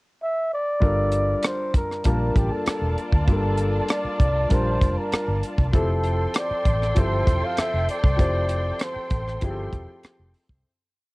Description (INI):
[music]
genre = lush 1970s-style soul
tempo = 98 BPM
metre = 4/4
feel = straight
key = G dorian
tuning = A4 = 441 Hz
[part]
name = breathy flugelhorn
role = melody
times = 0.2-10.4 s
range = G4 to F5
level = -26 LUFS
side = equal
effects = cassette tape
[part]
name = warm grand piano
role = accompaniment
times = 0.8-10.7 s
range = F3 to A5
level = -29 LUFS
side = left 2 dB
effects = cassette tape
[part]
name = vintage muted fingered electric bass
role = bass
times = 0.8-10.6 s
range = E1 to D2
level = -25 LUFS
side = equal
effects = tube saturation
[part]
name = tight funk drum kit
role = drums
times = 0.8-10.6 s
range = hi-hat, kick drum, rim click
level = -22 LUFS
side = equal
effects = none
[part]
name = warm studio violin section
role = second line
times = 2.1-10.6 s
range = F4 to C6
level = -33 LUFS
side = right 1 dB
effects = cassette tape
[sound]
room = small room ambience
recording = home recording on cassette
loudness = -20 LUFS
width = side -23 dB against mid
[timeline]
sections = 0.0-0.8 pickup bar; 0.8-10.7 verse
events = fade-out 8.2-10.7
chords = 0.0 N.C.; 0.8 Gm9; 5.7 Fmaj9